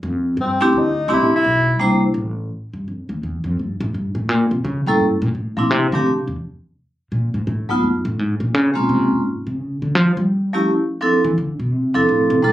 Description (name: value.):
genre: jazz, small-group swing and bop.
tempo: 170 BPM.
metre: 4/4.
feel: swing 65% on 8ths.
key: unclear.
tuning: A4 = 439 Hz.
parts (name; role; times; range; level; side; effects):
upright bass; bass; 0.0-12.5 s; G1 to G3; -20 LUFS; equal; none.
warm tenor saxophone; melody; 0.4-1.8 s; C4 to E4; -18 LUFS; left 2 dB; none.
vibraphone with medium hard mallets; accompaniment; 0.6-2.0, 4.9-12.5 s; F3 to C5; -16 LUFS; right 1 dB; none.
room: light reverb.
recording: recorded on a phone in the room, club reverb.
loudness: -16 LUFS.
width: side -14 dB against mid.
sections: 0.0-2.5 A section; 2.5-12.5 A section.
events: tenor saxophone solo 0.0-2.5; upright bass solo 2.5-12.5.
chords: 0.0 C69; 1.8 C13; 2.5 Fmaj9; 3.9 Gmadd9; 4.6 A7b9; 5.3 Dm7; 6.7 Absus2; 7.5 B7#11; 8.2 Bbm7; 9.6 A7b13 (rootless); 11.0 Dm9.